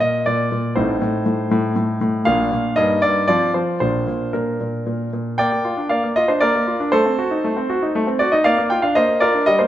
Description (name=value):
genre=classical-period piano sonatina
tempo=118 BPM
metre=3/4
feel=rubato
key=Bb major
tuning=A4 = 440 Hz
part: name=clear concert grand piano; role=solo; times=0.0-9.7 s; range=A1 to G5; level=-16 LUFS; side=equal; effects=none
room=moderate recital hall reverb, RT60 1.5 s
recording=none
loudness=-16 LUFS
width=side -12 dB against mid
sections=0.0-5.4 A section; 5.4-9.7 A section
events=none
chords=0.0 Bb; 0.8 Adim; 2.3 Bb; 2.8 Eb/G; 3.3 F5; 3.8 Bb; 6.9 Adim7; 8.5 Bb